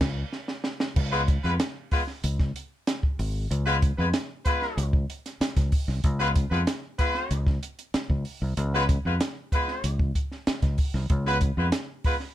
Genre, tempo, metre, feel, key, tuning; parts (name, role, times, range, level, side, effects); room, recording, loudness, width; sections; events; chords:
funk; 95 BPM; 4/4; straight; A4 = 440 Hz
fingered electric bass; bass; 0.0-11.7 s; Ab1 to F2; -26 LUFS; equal
compact cocktail drum kit; drums; 0.0-12.3 s; crash cymbal, hi-hat, kick drum, snare drum; -26 LUFS; equal
mellow horn section; second line; 1.1-12.2 s; Ab3 to Cb5; -27 LUFS; left 1 dB
little or no reverb; -24 LUFS; side -13 dB against mid
1.0-12.3 A section
band accent 0.0-1.0; drum fill 0.3-1.0
0.0 N.C.; 1.0 Db7